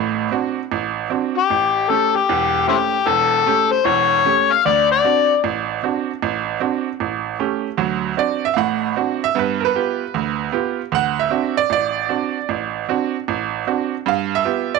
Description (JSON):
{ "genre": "blues", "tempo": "153 BPM", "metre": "4/4", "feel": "swing 65% on 8ths", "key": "D mixolydian", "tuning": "A4 = 441 Hz", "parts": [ { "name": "bright upright piano", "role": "accompaniment", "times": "0.0-14.8 s", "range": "E1 to F#5", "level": "-19 LUFS", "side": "right 12 dB", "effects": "none" }, { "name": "overdriven harmonica", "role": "melody", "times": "1.4-5.4 s", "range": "C4 to F5", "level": "-15 LUFS", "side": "left 10 dB", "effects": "slapback echo" } ], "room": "light reverb, small room ambience", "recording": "1960s-style stereo with parts hard left and right", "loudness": "-17 LUFS", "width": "side -4 dB against mid", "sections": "0.0-7.8 A section; 7.8-14.8 B section", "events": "none", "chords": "0.0 D7; 1.5 A7; 4.6 D7; 7.0 A7; 7.8 D7; 9.4 G7; 10.9 D7; 14.1 G7", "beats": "0.32 0.71 1.11 | 1.50 1.89 2.29 2.68 | 3.07 3.47 3.86 4.25 | 4.64 5.04 5.43 5.82 | 6.22 6.61 7.00 7.39 | 7.79 8.18 8.57 8.96 | 9.36 9.75 10.14 10.53 | 10.92 11.31 11.71 12.10 | 12.49 12.88 13.27 13.66 | 14.06 14.45" }